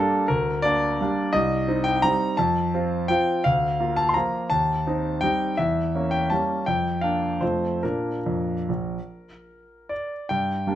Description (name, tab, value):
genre	classical, piano waltz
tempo	138-183 BPM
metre	3/4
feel	rubato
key	Bb major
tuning	A4 = 439 Hz
part	bright concert grand piano	solo	0.0-10.8 s	Bb1 to C6	-21 LUFS	equal	none
room	light reverb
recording	close, detailed microphones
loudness	-21 LUFS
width	side -12 dB against mid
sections	0.0-10.3 A section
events	none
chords	0.0 Gm; 1.3 Cm; 2.4 F; 3.4 Bb/D; 4.5 Cm/Eb; 5.6 Edim7; 6.7 Bb/F; 7.4 F; 7.8 Bb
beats	| 0.28 0.63 1.00 | 1.34 1.67 2.03 | 2.38 2.73 3.09 | 3.44 3.79 4.15 | 4.50 4.86 5.23 | 5.58 5.94 6.31 | 6.67 7.03 7.42 | 7.83 8.26 8.69 | 9.09 9.49 9.91 | 10.31 10.67